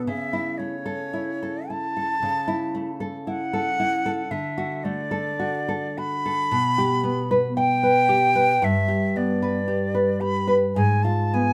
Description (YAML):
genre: romantic duo for flute and classical guitar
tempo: 50-59 BPM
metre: 4/4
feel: rubato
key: unclear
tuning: A4 = 440 Hz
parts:
  - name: bright silver concert flute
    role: melody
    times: 0.0-11.5 s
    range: C#5 to B5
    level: -26 LUFS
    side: equal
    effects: none
  - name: nylon-string guitar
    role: accompaniment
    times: 0.0-11.5 s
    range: G2 to G5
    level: -26 LUFS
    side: equal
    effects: none
room: light reverb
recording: none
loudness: -23 LUFS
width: mono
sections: 0.0-11.5 A section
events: none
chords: 0.1 A/C#; 4.3 D; 6.5 G/B; 8.6 G; 10.8 G#m6